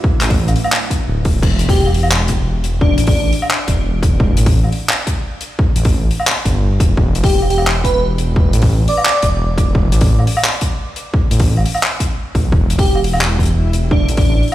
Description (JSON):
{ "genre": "half-time drum and bass", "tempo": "173 BPM", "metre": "4/4", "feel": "half-time", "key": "E minor", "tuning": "A4 = 440 Hz", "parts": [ { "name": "deep dark ambient pad", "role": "sustained chords", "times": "0.0-1.4 s", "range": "A3 to B4", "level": "-31 LUFS", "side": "right 3 dB", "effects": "none" }, { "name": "electronic kick drum", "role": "drums", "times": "0.0-14.2 s", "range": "none", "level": "-16 LUFS", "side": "equal", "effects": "studio reverb" }, { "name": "backwards swelling texture", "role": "texture", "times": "0.0-1.4, 13.2-14.5 s", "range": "E4", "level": "-34 LUFS", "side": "left 2 dB", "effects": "none" }, { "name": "dark detuned saw bass", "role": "bass", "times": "0.2-14.4 s", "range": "D1 to B1", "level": "-15 LUFS", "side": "equal", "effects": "none" }, { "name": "tight funk drum kit", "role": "drums", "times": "0.2-14.5 s", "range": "crash cymbal, handclaps, hi-hat, woodblock", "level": "-20 LUFS", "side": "equal", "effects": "studio reverb" }, { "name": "airy dreamy lead", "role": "melody", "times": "1.7-3.3, 7.2-9.4, 12.8-14.4 s", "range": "D4 to D5", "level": "-21 LUFS", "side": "equal", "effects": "chorus, tape echo" } ], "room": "small room ambience", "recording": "played on a big sound system in a bare room, stone room reverb", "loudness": "-12 LUFS", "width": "side -14 dB against mid", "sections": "0.0-1.4 A section; 1.4-14.5 A section", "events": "drop 0.0-1.4, 1.4-14.5", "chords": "0.0 E5; 1.4 N.C." }